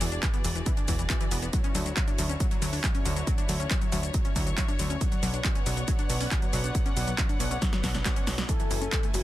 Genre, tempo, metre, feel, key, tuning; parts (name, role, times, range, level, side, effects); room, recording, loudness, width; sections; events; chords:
uplifting trance; 138 BPM; 4/4; straight; A4 = 441 Hz
rich studio string section; sustained chords; 0.0-9.2 s; D3 to G#5; -36 LUFS; left 1 dB; sidechain pumping
wide unison pluck; arpeggios; 0.0-9.2 s; E3 to D4; -35 LUFS; left 2 dB; sidechain pumping, tape echo
plucky analog bass; bass; 0.0-9.2 s; E1 to D2; -31 LUFS; equal; sidechain pumping
techno drum kit; drums; 0.0-9.2 s; handclaps, hi-hat, shaker, snare drum; -32 LUFS; equal
electronic kick drum; drums; 0.2-9.0 s; -28 LUFS; equal
warm velvety synth lead; second line; 8.5-9.2 s; F#4 to A4; -34 LUFS; left 4 dB; chorus, tape echo
digital ambience; dense, heavily limited modern master; -25 LUFS; side -14 dB against mid
0.0-9.2 A section
drum fill 7.6-8.5
0.0 E7; 1.5 Dmaj7; 5.0 Bmadd9; 8.5 F#m7